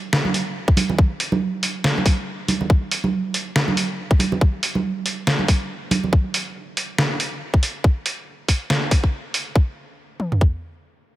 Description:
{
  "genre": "deep dubstep",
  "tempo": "140 BPM",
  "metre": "4/4",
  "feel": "swing 57% on 16ths, half-time",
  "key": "none",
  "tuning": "none",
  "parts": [
    { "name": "trip hop sampler-style drum kit", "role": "drums", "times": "0.1-9.4 s", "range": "hi-hat, snare drum", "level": "-22 LUFS", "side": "equal", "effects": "none" },
    { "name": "congas", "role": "percussion", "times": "0.2-6.1 s", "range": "none", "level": "-24 LUFS", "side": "right 3 dB", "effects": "dub echo" },
    { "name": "garage drum kit", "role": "drums", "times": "0.7-10.5 s", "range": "kick drum, toms", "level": "-16 LUFS", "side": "equal", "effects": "none" }
  ],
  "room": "little or no reverb",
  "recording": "none",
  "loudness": "-19 LUFS",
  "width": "side -15 dB against mid",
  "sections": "0.0-9.6 A section; 9.6-11.2 B section",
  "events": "none",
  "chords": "none"
}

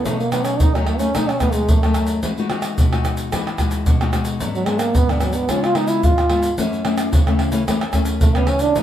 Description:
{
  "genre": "samba and choro",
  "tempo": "110 BPM",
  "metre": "4/4",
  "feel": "straight",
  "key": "unclear",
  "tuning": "A4 = 440 Hz",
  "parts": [
    { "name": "warm trombone", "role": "second line", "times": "0.0-8.8 s", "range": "D3 to E#4", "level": "-20 LUFS", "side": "right 3 dB", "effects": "none" },
    { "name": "nylon-string guitar", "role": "accompaniment", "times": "0.0-8.8 s", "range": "F#2 to F#4", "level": "-22 LUFS", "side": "left 4 dB", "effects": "none" },
    { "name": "tube shaker, surdo, pandeiro and tamborim", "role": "percussion", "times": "0.1-8.8 s", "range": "none", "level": "-18 LUFS", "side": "equal", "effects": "none" }
  ],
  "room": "wet studio reverb, RT60 0.8 s",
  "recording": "band playing live in one room",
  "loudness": "-16 LUFS",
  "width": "side -11 dB against mid",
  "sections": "0.0-8.8 A section",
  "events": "trombone solo 0.0-8.8",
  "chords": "0.1 B7; 2.2 Emaj9; 4.4 G#m7b5; 5.5 C#7; 6.6 F#m7"
}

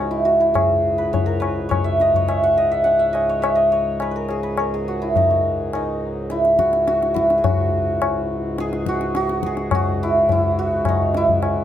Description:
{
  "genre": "indian classical, Hindustani",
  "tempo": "105 BPM",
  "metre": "4/4",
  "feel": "straight",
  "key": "C# raga bhimpalasi",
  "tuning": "A4 = 440 Hz",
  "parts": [
    { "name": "santur", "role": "melody", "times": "0.0-11.6 s", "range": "C#4 to F#5", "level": "-18 LUFS", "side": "right 1 dB", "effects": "plate reverb" },
    { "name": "pedal harmonium", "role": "drone", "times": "0.0-11.6 s", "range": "C#2 to G#2", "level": "-27 LUFS", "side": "equal", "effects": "none" },
    { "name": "tabla", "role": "percussion", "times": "0.6-11.6 s", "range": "none", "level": "-23 LUFS", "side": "left 4 dB", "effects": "none" }
  ],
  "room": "light reverb",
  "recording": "none",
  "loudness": "-17 LUFS",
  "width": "side -10 dB against mid",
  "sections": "0.0-7.4 A section; 7.4-11.6 B section",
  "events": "none",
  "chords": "none"
}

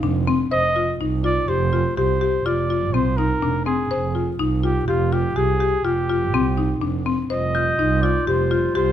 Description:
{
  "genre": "contemporary instrumental, chamber music in an uneven meter",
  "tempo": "124 BPM",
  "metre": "7/4",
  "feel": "straight",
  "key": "F dorian",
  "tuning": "A4 = 439 Hz",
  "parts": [
    { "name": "warm flugelhorn", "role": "melody", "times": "0.0-8.9 s", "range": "F4 to Eb5", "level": "-24 LUFS", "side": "right 2 dB", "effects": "none" },
    { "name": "mellow woodwind section", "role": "sustained chords", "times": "0.0-0.5, 7.3-8.9 s", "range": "C3 to F4", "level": "-31 LUFS", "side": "left 2 dB", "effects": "none" },
    { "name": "buzzing marimba with medium mallets", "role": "arpeggios", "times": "0.0-8.9 s", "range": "C4 to C5", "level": "-22 LUFS", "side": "left 5 dB", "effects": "none" },
    { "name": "dark double bass", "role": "bass", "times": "0.0-8.9 s", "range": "F1 to C2", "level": "-23 LUFS", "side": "right 4 dB", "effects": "none" },
    { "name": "glockenspiel with rubber mallets", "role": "texture", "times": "7.5-8.9 s", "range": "G6", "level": "-26 LUFS", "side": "left 2 dB", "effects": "none" }
  ],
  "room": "moderate recital hall reverb, RT60 1.3 s",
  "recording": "none",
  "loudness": "-18 LUFS",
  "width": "side -10 dB against mid",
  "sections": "0.5-8.9 A section",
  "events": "none",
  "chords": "0.0 Fm7; 0.5 Fsus2"
}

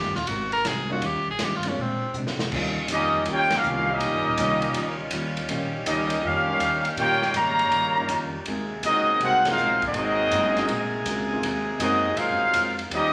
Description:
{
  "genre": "jazz, big band swing",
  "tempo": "162 BPM",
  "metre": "4/4",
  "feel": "swing 66% on 8ths",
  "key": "Eb major",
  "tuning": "A4 = 441 Hz",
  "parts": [
    { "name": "edgy tenor saxophone", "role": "melody", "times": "0.0-2.2 s", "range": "C4 to Bb4", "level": "-29 LUFS", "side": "equal", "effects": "none" },
    { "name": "archtop guitar, miked and amplified", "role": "accompaniment", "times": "0.0-13.1 s", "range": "Bb2 to Bb4", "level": "-36 LUFS", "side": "equal", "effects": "none" },
    { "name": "upright bass", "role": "bass", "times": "0.0-13.1 s", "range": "Eb1 to C3", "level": "-38 LUFS", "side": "equal", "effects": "none" },
    { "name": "swinging big-band drum kit", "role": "drums", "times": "0.0-13.0 s", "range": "crash cymbal, hi-hat, kick drum, ride cymbal, snare drum", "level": "-34 LUFS", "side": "equal", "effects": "none" },
    { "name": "warm baby grand piano", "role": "accompaniment", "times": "0.9-12.4 s", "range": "G3 to Ab4", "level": "-36 LUFS", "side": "equal", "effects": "none" },
    { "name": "warm saxophone section", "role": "sustained chords", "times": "2.5-13.1 s", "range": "C3 to Ab4", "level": "-35 LUFS", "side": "equal", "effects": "none" },
    { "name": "clear trumpet section", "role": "melody", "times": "2.9-13.1 s", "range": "C4 to Bb5", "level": "-24 LUFS", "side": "equal", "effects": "none" },
    { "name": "warm trombone section", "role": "second line", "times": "2.9-13.1 s", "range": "Db3 to G4", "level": "-35 LUFS", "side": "equal", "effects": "none" }
  ],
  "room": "moderate large studio reverb, RT60 1.2 s",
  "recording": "vinyl crackle",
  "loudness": "-24 LUFS",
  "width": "mono",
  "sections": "0.0-2.5 A section; 2.5-13.1 B section",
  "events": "tenor saxophone solo 0.0-2.5; drum fill 2.1-2.5; band accent 3.5, 9.4",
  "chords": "0.3 Ab9; 1.0 Eb9; 1.8 Bb9; 2.5 Eb9; 8.5 Ab9"
}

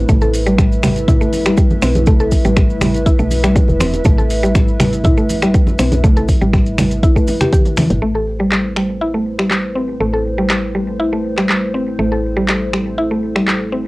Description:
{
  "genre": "afro house",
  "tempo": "121 BPM",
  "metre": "4/4",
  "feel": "straight",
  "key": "A minor",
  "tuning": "A4 = 436 Hz",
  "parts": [
    { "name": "dark analog pad", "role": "sustained chords", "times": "0.0-13.9 s", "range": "A3 to E5", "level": "-22 LUFS", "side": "equal", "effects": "lush chorus, sidechain pumping, cassette tape" },
    { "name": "woody FM bass", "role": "bass", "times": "0.0-13.9 s", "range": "E1 to B1", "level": "-21 LUFS", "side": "equal", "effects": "sidechain pumping" },
    { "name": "mallet-like synth pluck", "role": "arpeggios", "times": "0.1-13.8 s", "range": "E3 to A4", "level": "-18 LUFS", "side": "equal", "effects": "chorus, sidechain pumping, cassette tape, analog delay" },
    { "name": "deep house drum kit", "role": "drums", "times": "0.1-13.6 s", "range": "finger snaps, handclaps, hi-hat, toms", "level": "-21 LUFS", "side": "equal", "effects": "overdrive, small room reverb, cassette tape" },
    { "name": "electronic kick drum", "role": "drums", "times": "0.1-7.6 s", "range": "none", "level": "-13 LUFS", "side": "equal", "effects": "overdrive, small room reverb, cassette tape" },
    { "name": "congas", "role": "percussion", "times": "0.1-8.0 s", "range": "none", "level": "-21 LUFS", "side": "equal", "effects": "none" },
    { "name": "maracas", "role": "percussion", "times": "0.1-8.0 s", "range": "none", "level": "-34 LUFS", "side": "right 1 dB", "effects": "none" }
  ],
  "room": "little or no reverb",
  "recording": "home recording on cassette",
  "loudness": "-12 LUFS",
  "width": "side -21 dB against mid",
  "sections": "0.0-8.0 A section; 8.0-13.9 B section",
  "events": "drum fill 7.3-8.0",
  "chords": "0.0 A7(no3); 8.0 Am7"
}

